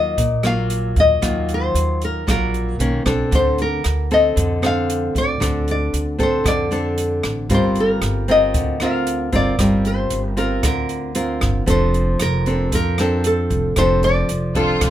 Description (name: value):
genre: bossa nova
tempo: 115 BPM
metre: 4/4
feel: straight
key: Bb major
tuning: A4 = 440 Hz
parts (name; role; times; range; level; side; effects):
- nylon-string guitar; melody; 0.0-14.9 s; A4 to F5; -20 LUFS; left 2 dB; none
- nylon-string guitar; accompaniment; 0.0-14.9 s; Bb2 to Bb4; -21 LUFS; equal; none
- upright bass; bass; 0.0-14.9 s; F1 to F2; -22 LUFS; equal; none
- open jazz drum kit; drums; 0.2-14.9 s; hi-hat, kick drum, rim click; -24 LUFS; right 1 dB; none
- warm studio violin section; second line; 14.6-14.9 s; F4; -21 LUFS; equal; none
room: light reverb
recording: none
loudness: -16 LUFS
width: side -12 dB against mid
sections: 0.0-14.9 A section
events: none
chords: 0.0 Ebmadd9; 2.8 Bmaj9; 3.3 Bbmaj9/D (rootless); 7.5 Gm7; 11.7 Bbmaj9/F